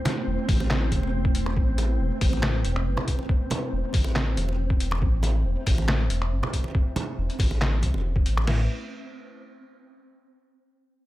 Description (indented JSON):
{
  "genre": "deep dubstep",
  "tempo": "139 BPM",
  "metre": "4/4",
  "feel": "swing 54% on 16ths, half-time",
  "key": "A minor",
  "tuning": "A4 = 440 Hz",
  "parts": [
    { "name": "dark analog pad", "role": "sustained chords", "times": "0.0-8.7 s", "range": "A3 to E5", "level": "-37 LUFS", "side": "right 2 dB", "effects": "chorus" },
    { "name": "flickering grainy texture", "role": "texture", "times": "0.0-8.5 s", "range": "C4", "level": "-35 LUFS", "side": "equal", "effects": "built-in reverb" },
    { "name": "trip hop sampler-style drum kit", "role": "drums", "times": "0.1-8.5 s", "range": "finger snaps, handclaps, hi-hat, snare drum", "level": "-30 LUFS", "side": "left 1 dB", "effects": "none" },
    { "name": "congas", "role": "percussion", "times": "0.1-8.5 s", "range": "none", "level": "-34 LUFS", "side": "right 3 dB", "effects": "dub echo" },
    { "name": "dark detuned saw bass", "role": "bass", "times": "0.3-8.7 s", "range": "E1 to C2", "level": "-25 LUFS", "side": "equal", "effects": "none" },
    { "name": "trip hop sampler-style drum kit", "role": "drums", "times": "0.5-8.6 s", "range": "crash cymbal, kick drum, snare drum", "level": "-25 LUFS", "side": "equal", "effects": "none" }
  ],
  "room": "little or no reverb",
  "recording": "none",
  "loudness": "-22 LUFS",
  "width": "side -16 dB against mid",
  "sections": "0.0-8.5 A section; 8.5-10.2 B section",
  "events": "filter sweep on analog synth pad 0.0-8.5",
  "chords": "0.0 A5"
}